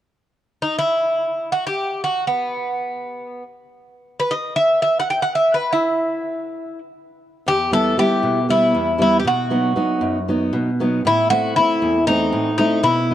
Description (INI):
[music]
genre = greek folk, Greek bouzouki band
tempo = free time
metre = none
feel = none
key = E harmonic minor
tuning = A4 = 440 Hz
[part]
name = Greek bouzouki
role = melody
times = 0.6-13.1 s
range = B3 to G5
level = -18 LUFS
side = equal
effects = none
[part]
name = fingerpicked steel-string acoustic guitar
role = accompaniment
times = 7.5-13.1 s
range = E2 to D#5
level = -19 LUFS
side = equal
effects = none
[sound]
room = moderate plate reverb, RT60 3.4 s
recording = dark, warm production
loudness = -17 LUFS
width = side -12 dB against mid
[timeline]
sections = 0.3-7.5 A section; 7.5-13.1 B section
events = none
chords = 0.3 N.C.; 7.5 Em; 9.3 B; 11.0 Am